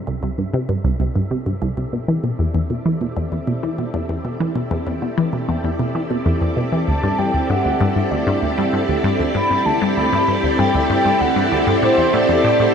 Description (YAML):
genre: ambient, sequencer-driven space music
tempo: 97 BPM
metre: 4/4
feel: straight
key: unclear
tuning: A4 = 442 Hz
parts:
  - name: string machine, full ensemble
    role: sustained chords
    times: 0.0-12.7 s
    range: C3 to D5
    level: -21 LUFS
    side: equal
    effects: ensemble chorus
  - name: wind-like tuned noise texture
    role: texture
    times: 0.0-12.7 s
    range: E5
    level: -33 LUFS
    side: right 4 dB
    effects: built-in reverb
  - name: resonant blip pluck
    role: riff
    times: 0.1-12.7 s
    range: C2 to E3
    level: -20 LUFS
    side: equal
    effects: chorus, phaser, ping-pong delay
  - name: mellow horn-like synth lead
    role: melody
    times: 6.9-12.7 s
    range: C5 to B5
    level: -20 LUFS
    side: equal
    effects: chorus, ping-pong delay
room: wet huge ambient reverb, RT60 8.4 s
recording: nothing above 10.9 kHz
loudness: -16 LUFS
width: side -7 dB against mid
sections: 0.0-12.7 A section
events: fade-in on string machine 0.0-12.7; fade-in on synth texture 0.0-12.7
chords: 0.0 C; 1.9 Em7; 6.9 Gmaj7; 11.8 Am7